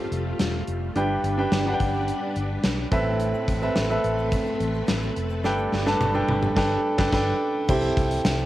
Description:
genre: 1980s-style pop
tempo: 107 BPM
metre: 4/4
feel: straight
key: unclear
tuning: A4 = 439 Hz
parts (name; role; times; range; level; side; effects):
- clear grand piano; accompaniment; 0.0-8.5 s; G2 to A5; -24 LUFS; right 1 dB; cassette tape
- string machine, full ensemble; sustained chords; 0.0-7.7 s; G3 to B4; -32 LUFS; left 1 dB; ensemble chorus, cassette tape
- vintage muted fingered electric bass; bass; 0.1-8.5 s; E1 to C2; -28 LUFS; equal; none
- gated 80s drum kit; drums; 0.1-8.4 s; crash cymbal, hi-hat, kick drum, snare drum, tambourine, toms; -26 LUFS; equal; cassette tape
- tube shaker; percussion; 3.2-8.5 s; none; -57 LUFS; left 10 dB; none
room: moderate studio reverb, RT60 0.6 s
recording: home recording on cassette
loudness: -21 LUFS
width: side -14 dB against mid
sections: 0.0-7.7 A section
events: drum fill 5.4-7.7; band accent 6.6-7.7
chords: 0.0 Fadd9; 1.0 G; 2.9 Amadd9; 5.4 Gadd9; 7.7 C6

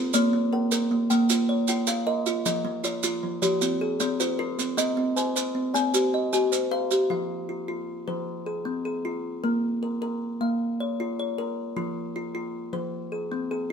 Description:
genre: southern african traditional, mbira-style interlocking cycle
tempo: 103 BPM (dotted quarters)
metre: 12/8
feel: straight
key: F equiheptatonic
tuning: A4 = 437 Hz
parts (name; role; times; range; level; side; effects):
- kalimba; arpeggios; 0.0-13.7 s; F3 to Ab5+43c; -26 LUFS; left 1 dB; none
- kalimba; arpeggios; 0.0-7.5 s; F3 to Ab5+43c; -28 LUFS; right 2 dB; none
- maracas; percussion; 0.1-7.1 s; none; -30 LUFS; right 5 dB; none
room: light reverb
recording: band playing live in one room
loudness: -24 LUFS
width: side -6 dB against mid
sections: 0.0-7.1 A section; 7.1-13.7 A section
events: none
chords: 0.1 Bb; 2.5 Fm; 4.8 Cm; 7.1 Fm; 9.4 Bb; 11.8 Fm

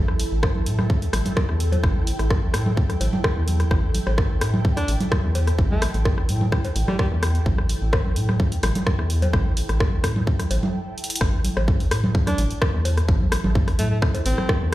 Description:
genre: minimal techno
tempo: 128 BPM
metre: 4/4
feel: straight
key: unclear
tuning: A4 = 436 Hz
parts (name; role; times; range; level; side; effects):
- rubbery square bass; bass; 0.0-14.7 s; A1 to A2; -22 LUFS; equal; sidechain pumping
- bubbling stepped-filter texture; texture; 0.0-10.7 s; A4; -39 LUFS; right 3 dB; chorus, built-in reverb, sidechain pumping
- ethereal airy pad; texture; 0.0-14.7 s; E4 to A5; -34 LUFS; equal; ensemble chorus, built-in reverb, phaser, sidechain pumping
- electronic rim click, cowbell and congas; percussion; 0.1-14.5 s; none; -27 LUFS; equal; dub echo
- punchy analog drum machine; drums; 0.2-14.6 s; hi-hat, rim click; -29 LUFS; right 1 dB; overdrive
- electronic kick drum; drums; 0.4-14.6 s; none; -20 LUFS; equal; none
- bright alto saxophone; melody; 4.8-7.1, 12.3-14.6 s; G3 to D4; -30 LUFS; equal; dub echo
room: little or no reverb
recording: played on a big sound system in a bare room, large studio reverb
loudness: -19 LUFS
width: side -16 dB against mid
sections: 0.0-11.2 A section; 11.2-14.7 B section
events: stop 10.7-11.2; drum fill 11.0; drop 11.2-14.7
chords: 0.0 A5

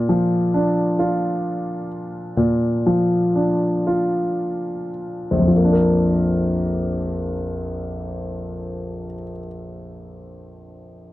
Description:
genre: pop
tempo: 34-46 BPM (dotted quarters)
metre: 6/8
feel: straight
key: Bb major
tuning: A4 = 441 Hz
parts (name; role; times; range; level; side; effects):
- warm grand piano; accompaniment; 0.0-11.1 s; Bb1 to Bb4; -19 LUFS; equal; none
room: light reverb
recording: dry, close 1970s-style studio recording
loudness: -18 LUFS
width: side -16 dB against mid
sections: 0.0-5.5 A section; 5.5-9.0 B section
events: slowing down 0.0-5.5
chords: 0.0 Bb

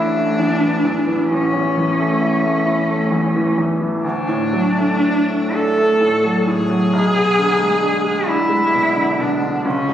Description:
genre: classical, romantic duo for cello and grand piano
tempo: 39-45 BPM (dotted quarters)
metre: 12/8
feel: rubato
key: unclear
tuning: A4 = 440 Hz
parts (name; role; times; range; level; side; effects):
- warm cello; melody; 0.0-9.9 s; C#4 to A4; -18 LUFS; equal; none
- bright baby grand piano; accompaniment; 0.0-9.9 s; A1 to E4; -18 LUFS; equal; none
room: moderate scoring stage reverb, RT60 1.8 s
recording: recorded on a phone in the room, studio reverb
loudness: -15 LUFS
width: side -10 dB against mid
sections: 0.0-9.9 A section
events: none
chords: 0.0 A; 4.0 D; 6.9 G#dim/B

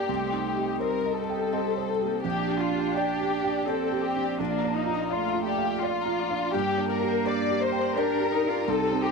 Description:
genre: neoclassical piano and strings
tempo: 84 BPM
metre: 3/4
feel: rubato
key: G minor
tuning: A4 = 440 Hz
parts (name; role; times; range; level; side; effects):
- muted studio violin section; melody; 0.0-9.1 s; D4 to D5; -28 LUFS; left 7 dB; none
- muted cello; second line; 0.0-9.1 s; G3 to F4; -31 LUFS; right 11 dB; none
- felt-muted upright piano; accompaniment; 0.0-9.1 s; Bb1 to G5; -30 LUFS; right 8 dB; none
- warm analog pad; sustained chords; 0.0-9.1 s; C4 to Eb5; -40 LUFS; left 1 dB; none
- Celtic harp; arpeggios; 0.0-9.1 s; C4 to Bb5; -34 LUFS; left 12 dB; slapback echo
room: moderate echo chamber reverb, RT60 1.8 s, studio reverb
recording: 1960s-style stereo with parts hard left and right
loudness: -24 LUFS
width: side -4 dB against mid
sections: 0.0-9.1 A section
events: none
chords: 0.1 Cm; 2.2 Gm/Bb; 4.4 Bb; 6.5 Gm

